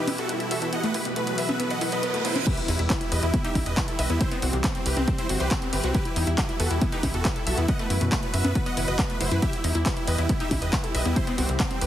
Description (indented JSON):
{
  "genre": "uplifting trance",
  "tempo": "138 BPM",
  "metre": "4/4",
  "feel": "straight",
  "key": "E harmonic minor",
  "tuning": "A4 = 440 Hz",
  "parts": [
    { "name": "supersaw chords", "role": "melody", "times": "0.0-11.9 s", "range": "C4 to F#5", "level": "-30 LUFS", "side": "right 1 dB", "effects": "sidechain pumping, ping-pong delay" },
    { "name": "lush unison pad", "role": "sustained chords", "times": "0.0-11.9 s", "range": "B2 to G4", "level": "-33 LUFS", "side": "equal", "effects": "chorus, sidechain pumping" },
    { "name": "riser, reverse cymbal and impact", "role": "sound effects", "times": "0.3-4.2 s", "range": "none", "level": "-35 LUFS", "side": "right 2 dB", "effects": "none" },
    { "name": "wide unison pluck", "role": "arpeggios", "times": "0.1-11.8 s", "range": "B2 to E5", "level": "-32 LUFS", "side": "left 2 dB", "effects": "sidechain pumping, ping-pong delay" },
    { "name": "tight sequencer bass", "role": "bass", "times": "0.1-11.9 s", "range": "F#1 to F#2", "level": "-27 LUFS", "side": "equal", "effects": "sidechain pumping, high-pass filter" },
    { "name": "punchy analog drum machine", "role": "drums", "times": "0.1-11.9 s", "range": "congas, crash cymbal, handclaps, hi-hat", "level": "-31 LUFS", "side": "equal", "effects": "studio reverb" },
    { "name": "electronic kick drum", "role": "drums", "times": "2.5-11.7 s", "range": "none", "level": "-26 LUFS", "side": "equal", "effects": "overdrive, studio reverb" }
  ],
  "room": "light reverb, digital ambience",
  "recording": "heavily compressed radio sound, multiband compression",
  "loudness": "-22 LUFS",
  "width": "side -12 dB against mid",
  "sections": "0.0-2.5 A section; 2.5-11.9 B section",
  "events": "build-up 0.0-2.5; riser 0.3-2.5; reverse cymbal 1.6-2.5; drop 2.5-11.9; impact 2.5-4.2",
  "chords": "0.0 Em; 0.7 Bsus4/F#; 2.5 Em; 4.2 C; 5.9 Em; 7.7 Bsus4/F#; 9.4 Em; 11.2 C"
}